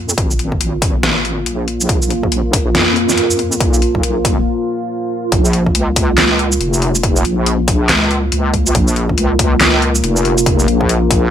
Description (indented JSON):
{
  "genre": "deep dubstep",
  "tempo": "140 BPM",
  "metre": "4/4",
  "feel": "swing 60% on 16ths, half-time",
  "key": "Bb phrygian",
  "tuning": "A4 = 442 Hz",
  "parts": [
    { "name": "dark analog pad", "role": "sustained chords", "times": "0.0-11.3 s", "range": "Bb3 to F4", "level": "-18 LUFS", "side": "equal", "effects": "chorus, phaser" },
    { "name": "wobble bass", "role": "bass", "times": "0.0-11.3 s", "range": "F1 to F2", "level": "-17 LUFS", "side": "equal", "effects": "chorus" },
    { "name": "dubstep drum kit", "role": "drums", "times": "0.1-11.2 s", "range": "handclaps, hi-hat, shaker, snare drum", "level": "-16 LUFS", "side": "left 1 dB", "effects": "none" },
    { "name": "electronic kick drum", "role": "drums", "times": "0.2-11.2 s", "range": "none", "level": "-17 LUFS", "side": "equal", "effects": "none" }
  ],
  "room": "light reverb",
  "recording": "none",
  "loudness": "-12 LUFS",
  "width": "side -10 dB against mid",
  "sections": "0.0-5.3 A section; 5.3-11.3 B section",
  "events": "build-up 0.0-5.3; break 4.5-5.3; drop 5.3-11.3",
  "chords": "0.0 Bb5; 5.3 Bbm",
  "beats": "| 0.18 0.61 1.03 1.46 | 1.89 2.32 2.75 3.18 | 3.61 4.04 4.46 4.89 | 5.32 5.75 6.18 6.61 | 7.04 7.46 7.89 8.32 | 8.75 9.18 9.61 10.04 | 10.46 10.89"
}